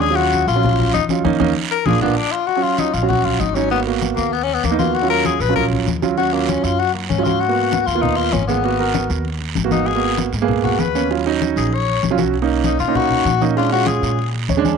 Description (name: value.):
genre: Afro-Cuban jazz.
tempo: 195 BPM.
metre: 4/4.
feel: straight.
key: Eb minor.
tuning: A4 = 440 Hz.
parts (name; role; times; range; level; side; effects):
bright tenor saxophone; second line; 0.0-14.3 s; Bb3 to Db5; -20 LUFS; left 11 dB; none.
warm grand piano; accompaniment; 0.0-14.8 s; Gb3 to Ab5; -20 LUFS; right 10 dB; none.
upright bass; bass; 0.0-14.8 s; Ab1 to B2; -23 LUFS; equal; none.
congas; percussion; 0.0-14.8 s; none; -24 LUFS; left 7 dB; none.
guiro; percussion; 0.0-14.8 s; none; -30 LUFS; right 12 dB; none.
room: moderate spring reverb, RT60 1.6 s, studio reverb.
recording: 1960s-style stereo with parts hard left and right.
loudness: -15 LUFS.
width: side -6 dB against mid.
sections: 0.0-2.5 A section; 2.5-14.8 A section.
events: tenor saxophone solo 0.0-14.8; band accent 1.3-2.5; grand piano fill 14.3-14.8.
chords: 0.0 Ebm7; 1.9 Bb; 2.5 Ebm7; 3.7 Abm7; 4.9 Ebm7; 7.4 Abm7; 11.1 Ebm7; 12.3 Bmaj7; 13.6 Bb7#9.